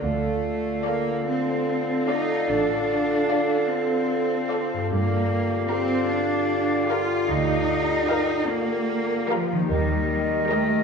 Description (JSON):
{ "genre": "classical, slow romantic movement for symphony orchestra", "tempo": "50 BPM (dotted quarters)", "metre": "12/8", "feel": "rubato", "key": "unclear", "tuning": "A4 = 439 Hz", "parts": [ { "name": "clear clarinet", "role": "second line", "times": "0.0-10.8 s", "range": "G4 to Bb4", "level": "-34 LUFS", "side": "right 2 dB", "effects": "none" }, { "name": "silver concert flute", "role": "second line", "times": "0.0-10.8 s", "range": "Eb5 to F5", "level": "-30 LUFS", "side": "equal", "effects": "none" }, { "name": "warm bassoon", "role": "accompaniment", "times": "0.0-10.8 s", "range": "D3 to Eb3", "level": "-29 LUFS", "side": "right 2 dB", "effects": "none" }, { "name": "mellow French horn section", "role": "sustained chords", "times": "0.0-10.8 s", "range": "F4 to Bb4", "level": "-29 LUFS", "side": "left 5 dB", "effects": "none" }, { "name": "concert harp", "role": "arpeggios", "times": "0.0-10.8 s", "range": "G2 to G4", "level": "-32 LUFS", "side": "left 3 dB", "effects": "none" }, { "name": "rich studio cello section", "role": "bass", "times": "0.0-10.8 s", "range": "F3 to F4", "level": "-26 LUFS", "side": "right 1 dB", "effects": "none" }, { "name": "rich studio double bass section", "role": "bass", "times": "0.0-10.7 s", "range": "A1 to G2", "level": "-30 LUFS", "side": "right 3 dB", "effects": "none" }, { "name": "rich studio violin section", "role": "melody", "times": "0.9-10.8 s", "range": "Eb5 to F5", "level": "-36 LUFS", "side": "left 1 dB", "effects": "none" }, { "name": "warm studio violin section", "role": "second line", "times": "0.9-10.8 s", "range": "Bb4 to D5", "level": "-33 LUFS", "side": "left 3 dB", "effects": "none" }, { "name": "rich studio viola section", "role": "accompaniment", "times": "0.9-10.8 s", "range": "G4 to A4", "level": "-37 LUFS", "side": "right 3 dB", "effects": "none" } ], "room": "wet recital hall reverb, RT60 1.3 s", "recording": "recorded in a church or concert hall", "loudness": "-21 LUFS", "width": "side -5 dB against mid", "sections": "0.0-10.8 A section", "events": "none", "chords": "0.0 Dm; 4.9 Gm7; 9.7 Eb" }